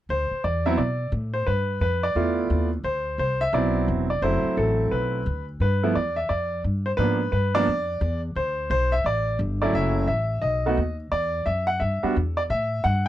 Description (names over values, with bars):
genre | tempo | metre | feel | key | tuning
jazz piano trio | 174 BPM | 4/4 | swing 63% on 8ths | D mixolydian | A4 = 441 Hz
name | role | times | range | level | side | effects
bright grand piano | melody | 0.1-13.1 s | F3 to F#5 | -24 LUFS | right 1 dB | none
upright bass | bass | 0.1-13.1 s | E1 to B2 | -26 LUFS | equal | none
room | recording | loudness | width
little or no reverb | dry, close 1970s-style studio recording | -22 LUFS | side -13 dB against mid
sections
0.1-13.1 A section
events
none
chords
0.1 D7sus2; 1.5 G13; 2.8 D13; 5.6 G13; 7.0 G#dim7; 8.4 D7(no3); 9.7 F#m7; 10.4 B; 11.1 Em7; 12.5 A7(no3)